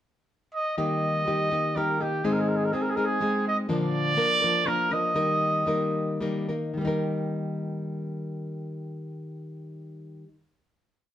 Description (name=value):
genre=mexican folk, mariachi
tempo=104-126 BPM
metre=3/4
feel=straight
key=Eb major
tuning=A4 = 440 Hz
part: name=clear trumpet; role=melody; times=0.5-6.2 s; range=G4 to Eb5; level=-26 LUFS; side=right 2 dB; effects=none
part: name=nylon-string guitar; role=accompaniment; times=0.8-10.4 s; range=Ab2 to Bb4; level=-27 LUFS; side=left 1 dB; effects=none
room=wet studio reverb, RT60 0.7 s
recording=band playing live in one room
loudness=-24 LUFS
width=side -11 dB against mid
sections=0.0-0.8 pickup bar; 0.8-6.8 A section; 6.8-10.2 final chord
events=slowing down 3.7-6.8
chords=0.0 N.C.; 0.8 Eb; 2.2 Ab; 3.7 Bb; 5.2 Eb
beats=0.29 | 0.78 1.27 1.76 | 2.25 2.73 3.21 | 3.69 4.17 4.66 | 5.16 5.67 6.22 | 6.79 7.36 7.94 | 8.50 9.07 9.64